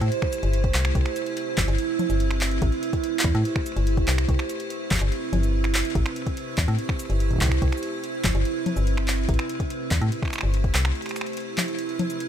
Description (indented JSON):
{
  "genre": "IDM",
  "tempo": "144 BPM",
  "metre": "4/4",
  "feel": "straight",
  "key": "A minor",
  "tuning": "A4 = 439 Hz",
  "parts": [
    { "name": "icy glass pad", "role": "sustained chords", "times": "0.0-12.3 s", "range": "C3 to C5", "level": "-28 LUFS", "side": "right 4 dB", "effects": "chorus, built-in reverb" },
    { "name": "metallic FM bass", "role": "bass", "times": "0.0-10.9 s", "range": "G1 to A2", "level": "-23 LUFS", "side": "left 1 dB", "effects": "none" },
    { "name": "booming analog drum machine", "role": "drums", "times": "0.0-12.3 s", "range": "cabasa, congas, finger snaps, handclaps, hi-hat", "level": "-29 LUFS", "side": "left 1 dB", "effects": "ping-pong delay" },
    { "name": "electronic kick drum", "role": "drums", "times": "0.2-10.7 s", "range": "none", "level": "-26 LUFS", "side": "left 1 dB", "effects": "overdrive" }
  ],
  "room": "little or no reverb",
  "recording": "none",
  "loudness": "-22 LUFS",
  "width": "side -10 dB against mid",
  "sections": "0.0-12.3 A section",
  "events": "break 11.0-12.3",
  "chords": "0.0 Am7; 1.0 Cmaj7; 2.6 Am7; 4.3 Cmaj7; 6.0 Am7; 7.6 Cmaj7; 9.3 Am7; 11.0 Cmaj7",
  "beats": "0.12 0.54 | 0.95 1.37 1.79 2.20 | 2.62 3.04 3.45 3.87 | 4.29 4.70 5.12 5.54 | 5.95 6.37 6.79 7.20 | 7.62 8.04 8.45 8.87 | 9.29 9.70 10.12 10.54 | 10.95 11.37 11.79 12.20"
}